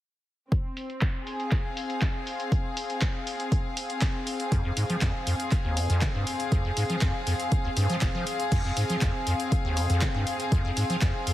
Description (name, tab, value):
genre	acid house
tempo	120 BPM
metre	4/4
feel	straight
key	F minor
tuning	A4 = 441 Hz
part	electronic kick drum	drums	0.5-11.1 s	none	-26 LUFS	equal	none
part	punchy analog drum machine	drums	0.5-11.3 s	crash cymbal, handclaps, hi-hat	-34 LUFS	equal	low-pass filter on hats, low-pass filter on snare, low-pass filter on cymbals
part	rich studio string section	texture	0.5-11.3 s	C4 to F5	-31 LUFS	left 2 dB	sidechain pumping
part	acid bass, square	riff	4.5-11.3 s	F1 to F3	-28 LUFS	equal	tube saturation, lush chorus, cassette tape, sidechain pumping
room	light reverb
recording	heavily compressed radio sound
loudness	-25 LUFS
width	side -14 dB against mid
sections	0.5-8.5 A section; 8.5-11.3 B section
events	none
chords	0.5 Fm